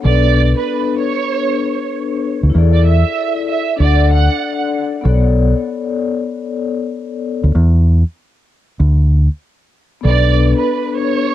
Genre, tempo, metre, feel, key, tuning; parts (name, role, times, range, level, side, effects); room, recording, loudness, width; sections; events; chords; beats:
hip hop; 96 BPM; 4/4; swing 63% on 16ths; B minor; A4 = 440 Hz
vibraphone with soft mallets; accompaniment; 0.0-11.3 s; B3 to F#5; -18 LUFS; left 7 dB; high-pass filter, low-pass filter
warm studio violin section; melody; 0.1-4.6, 10.1-11.3 s; B4 to F#5; -19 LUFS; right 10 dB; high-pass filter, low-pass filter, cassette tape, analog delay
deep dub fingered electric bass; bass; 0.1-10.5 s; B1 to E2; -11 LUFS; equal
small room ambience; home recording on cassette; -13 LUFS; side -12 dB against mid
0.0-11.3 A section
0.0 Bm9; 2.5 E7sus4; 3.8 D; 5.0 Bm9; 7.5 N.C.; 10.0 Bm9
| 0.05 0.67 1.30 1.92 | 2.55 3.17 3.80 4.42 | 5.05 5.67 6.30 6.92 | 7.55 8.17 8.80 9.42 | 10.05 10.67 11.30